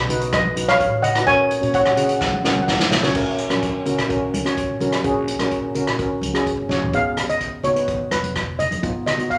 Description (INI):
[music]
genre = calypso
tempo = 127 BPM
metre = 4/4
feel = straight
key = F# major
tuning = A4 = 440 Hz
[part]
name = steel pan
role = melody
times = 0.0-2.8, 6.9-9.4 s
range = B4 to G#5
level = -22 LUFS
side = equal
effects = none
[part]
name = upright bass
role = bass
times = 0.0-9.4 s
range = E#1 to A#2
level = -34 LUFS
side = equal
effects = none
[part]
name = steel pan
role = accompaniment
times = 0.1-9.4 s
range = B3 to C#5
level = -25 LUFS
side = equal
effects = none
[part]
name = unplugged drum kit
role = drums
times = 0.1-9.4 s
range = crash cymbal, hi-hat, kick drum, rim click, snare drum, toms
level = -26 LUFS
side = equal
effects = none
[part]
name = congas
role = percussion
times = 0.1-9.2 s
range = none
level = -32 LUFS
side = equal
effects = none
[sound]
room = wet large studio reverb, RT60 0.8 s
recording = none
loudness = -20 LUFS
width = mono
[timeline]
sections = 0.0-3.2 A section; 3.2-6.9 B section; 6.9-9.4 C section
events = drum fill 2.2-3.2, 6.7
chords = 0.0 B; 1.3 F#/A#; 6.9 G#m